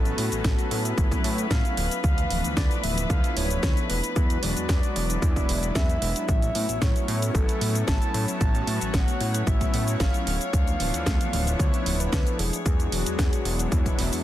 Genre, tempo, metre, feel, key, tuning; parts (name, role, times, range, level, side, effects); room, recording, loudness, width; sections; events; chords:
nu-disco, nu disco; 113 BPM; 4/4; straight; A major; A4 = 439 Hz
soft octave-layered synth lead; melody; 0.0-14.2 s; G#4 to A5; -33 LUFS; equal; chorus, ping-pong delay
warm analog pad; accompaniment; 0.0-14.2 s; E3 to F#4; -31 LUFS; equal; chorus
warm chamber string section; sustained chords; 0.0-14.2 s; B3 to C#5; -35 LUFS; left 5 dB; sidechain pumping
fat analog bass; bass; 0.0-14.2 s; D1 to A2; -28 LUFS; equal
house drum kit; drums; 0.1-14.2 s; cabasa, hi-hat, snare drum; -31 LUFS; right 1 dB; overdrive
electronic kick drum; drums; 0.4-14.0 s; -24 LUFS; equal; overdrive
digital ambience; dense, heavily limited modern master; -22 LUFS; side -13 dB against mid
0.0-14.2 A section
0.0 A6; 1.8 Dm6; 3.9 E7; 6.3 A6; 10.3 Dm6; 12.4 E7